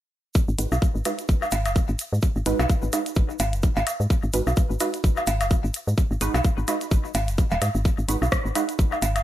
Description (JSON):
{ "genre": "minimal techno", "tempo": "128 BPM", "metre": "4/4", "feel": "swing 57% on 16ths", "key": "G# minor", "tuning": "A4 = 441 Hz", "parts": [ { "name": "tube shaker", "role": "percussion", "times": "0.3-9.2 s", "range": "none", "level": "-37 LUFS", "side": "right 3 dB", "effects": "none" }, { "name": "electronic kick drum", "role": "drums", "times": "0.4-8.9 s", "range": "none", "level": "-21 LUFS", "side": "equal", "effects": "none" }, { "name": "woody FM bass", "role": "bass", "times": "0.5-9.2 s", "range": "D#1 to G#2", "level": "-24 LUFS", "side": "equal", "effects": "sidechain pumping" }, { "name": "filtered dub chord stab", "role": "stabs", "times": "0.6-8.6 s", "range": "G#3 to B4", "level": "-29 LUFS", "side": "right 4 dB", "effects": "ensemble chorus, ping-pong delay" }, { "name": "minimal click drum kit", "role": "drums", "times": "0.6-9.2 s", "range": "hi-hat, rim click", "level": "-30 LUFS", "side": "left 2 dB", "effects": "none" }, { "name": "woodblock and cowbell", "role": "percussion", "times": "0.7-9.2 s", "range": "none", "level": "-28 LUFS", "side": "equal", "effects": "ping-pong delay" } ], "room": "light reverb", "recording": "none", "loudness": "-21 LUFS", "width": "side -13 dB against mid", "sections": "0.4-9.2 A section", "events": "none", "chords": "0.4 G#m7" }